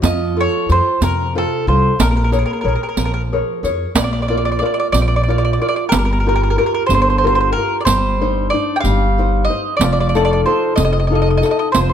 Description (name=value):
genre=italian folk, Italian serenade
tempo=61 BPM (dotted quarters)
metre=6/8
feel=straight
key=Bb major from 4.0 s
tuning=A4 = 440 Hz
part: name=nylon-string guitar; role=accompaniment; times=0.0-11.9 s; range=C3 to D5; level=-19 LUFS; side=left 2 dB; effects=none
part: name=upright bass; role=bass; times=0.0-11.9 s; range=F1 to F2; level=-18 LUFS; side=equal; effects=none
part: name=riq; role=percussion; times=0.0-11.9 s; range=none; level=-20 LUFS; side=right 5 dB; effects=none
part: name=mandolin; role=melody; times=0.1-11.9 s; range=A4 to G5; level=-19 LUFS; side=right 2 dB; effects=none
room=light reverb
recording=close, detailed microphones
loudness=-14 LUFS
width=side -8 dB against mid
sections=0.0-4.0 A section; 4.0-11.9 B section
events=none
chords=0.0 F; 2.0 Bbm7; 4.0 Bb; 5.9 Gm7; 7.9 Cmadd9/G; 9.8 F7